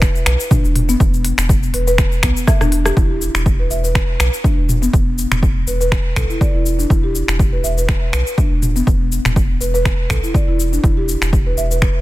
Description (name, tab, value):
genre	afro house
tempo	122 BPM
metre	4/4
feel	swing 55% on 16ths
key	E minor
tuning	A4 = 441 Hz
part	buzzing marimba with soft mallets	arpeggios	0.0-11.9 s	B3 to E5	-22 LUFS	equal	sidechain pumping, tape echo
part	round analog bass	bass	0.0-11.9 s	E1 to B1	-19 LUFS	equal	sidechain pumping
part	afro-pop drum kit	drums	0.0-11.9 s	finger snaps, hi-hat, rim click, shaker, toms	-22 LUFS	left 1 dB	soft clipping on snare
part	electronic kick drum	drums	0.0-11.9 s	none	-16 LUFS	equal	overdrive
room	digital ambience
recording	dense, heavily limited modern master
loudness	-14 LUFS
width	side -17 dB against mid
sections	0.0-3.0 A section; 3.0-12.0 B section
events	drop 0.0-3.0; drum fill 2.5-3.0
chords	0.0 E5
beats	0.02 0.51 | 1.00 1.49 1.98 2.48 | 2.97 3.46 3.95 4.44 | 4.93 5.43 5.92 6.41 | 6.90 7.39 7.89 8.38 | 8.87 9.36 9.85 10.35 | 10.84 11.33 11.82